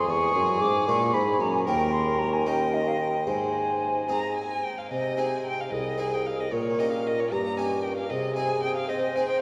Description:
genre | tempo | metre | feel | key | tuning
classical, baroque-style sonata movement with continuo | 75 BPM (dotted quarters) | 6/8 | straight | Ab major | A4 = 438 Hz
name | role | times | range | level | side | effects
rich violin | melody | 0.0-9.4 s | Ab4 to Bb5 | -34 LUFS | equal | none
hollow concert flute | second line | 0.0-9.4 s | G4 to D6 | -30 LUFS | equal | none
harpsichord | accompaniment | 0.0-9.4 s | C2 to Bb4 | -35 LUFS | equal | none
warm bassoon | bass | 0.0-9.4 s | C2 to C4 | -32 LUFS | equal | none
room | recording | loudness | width
wet cathedral reverb, RT60 5.1 s | recorded in a church or concert hall | -26 LUFS | mono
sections
0.0-4.9 A section; 4.9-9.4 A section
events
none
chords
0.1 E7; 1.7 Eb5; 3.3 Ab; 4.9 Ab/C; 6.5 Eb7/Bb; 8.1 Ab/C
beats
| 0.08 0.88 | 1.67 2.46 | 3.28 4.09 | 4.91 5.72 | 6.52 7.32 | 8.11 8.90

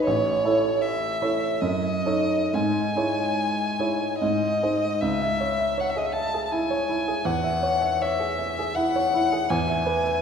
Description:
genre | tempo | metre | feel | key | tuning
classical, romantic duo for violin and grand piano | 63-86 BPM | 3/4 | rubato | C# minor | A4 = 442 Hz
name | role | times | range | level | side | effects
rich violin | melody | 0.0-10.2 s | C#5 to A5 | -25 LUFS | left 2 dB | none
clear baby grand piano | accompaniment | 0.0-10.2 s | A1 to E5 | -24 LUFS | right 1 dB | none
room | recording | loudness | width
wet scoring stage reverb, RT60 1.7 s | heard from further back in the room | -22 LUFS | side -7 dB against mid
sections
0.0-5.0 A section; 5.0-10.2 B section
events
none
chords
0.1 A; 1.6 D#m7b5/F#; 2.5 C#m/G#; 4.2 G#; 5.0 C#m; 7.3 C#m/E; 9.5 E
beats
| 0.06 0.82 1.62 | 2.53 3.38 4.21 | 5.02 5.76 6.52 | 7.26 8.01 8.77 | 9.50

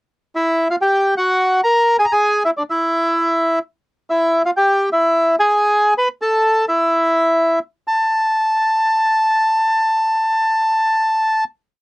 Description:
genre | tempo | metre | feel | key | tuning
tango | 128 BPM | 4/4 | rubato | unclear | A4 = 442 Hz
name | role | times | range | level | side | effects
bandoneon | solo | 0.4-11.4 s | D4 to B5 | -14 LUFS | equal | none
room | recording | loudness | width
little or no reverb | worn, warbling old tape, cassette tape, warbly pitch drift | -14 LUFS | side -25 dB against mid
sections
0.3-7.9 A section; 7.9-11.6 final note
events
none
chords
0.3 Emadd9; 1.3 F#add9; 2.2 E; 3.2 N.C.; 4.1 Fsus2; 5.0 E; 5.5 N.C.; 6.0 A5; 7.4 N.C.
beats
| 0.35 0.82 1.29 1.75 | 2.22 2.69 3.16 3.62 | 4.09 4.56 5.03 5.50 | 5.97 6.44 6.92 7.39 | 7.87 8.34 8.81 9.28 | 9.74 10.21 10.69 11.16

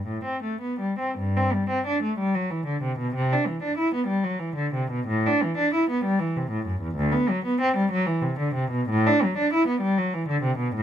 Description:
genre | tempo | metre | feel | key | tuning
classical, baroque-style suite movement for unaccompanied cello | 63 BPM (dotted quarters) | 6/8 | uneven beats, rubato | G major | A4 = 440 Hz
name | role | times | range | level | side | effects
warm cello | solo | 0.0-10.8 s | D2 to E4 | -22 LUFS | equal | none
room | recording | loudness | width
little or no reverb | close, detailed microphones | -22 LUFS | side -10 dB against mid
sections
0.0-1.2 A section; 1.2-10.8 B section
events
none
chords
none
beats
0.06 | 1.16 2.18 | 3.14 4.09 | 5.08 6.04 | 6.98 7.90 | 8.88 9.83 | 10.76

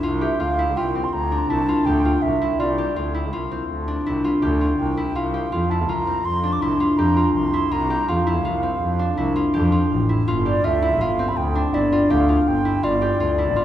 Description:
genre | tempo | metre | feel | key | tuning
contemporary instrumental, chamber music in an uneven meter | 164 BPM | 7/4 | straight | C mixolydian | A4 = 440 Hz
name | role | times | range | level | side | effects
concert harp | arpeggios | 0.0-13.6 s | C4 to G4 | -21 LUFS | left 1 dB | none
clear double bass | bass | 0.0-13.6 s | G1 to F2 | -23 LUFS | equal | none
baroque flute | melody | 0.2-13.6 s | D5 to D6 | -24 LUFS | right 1 dB | none
room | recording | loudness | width
wet scoring stage reverb, RT60 1.6 s | heard from further back in the room | -18 LUFS | side -11 dB against mid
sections
0.0-13.6 A section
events
none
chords
0.0 Cadd11; 5.2 Bbsus2/C; 10.3 G5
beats
| 0.03 0.40 0.76 1.13 1.50 1.86 2.23 | 2.59 2.96 3.33 3.69 4.06 4.42 4.79 | 5.16 5.52 5.89 6.25 6.62 6.99 7.35 | 7.72 8.08 8.45 8.81 9.18 9.54 9.91 | 10.28 10.64 11.01 11.37 11.74 12.10 12.47 | 12.83 13.20 13.56

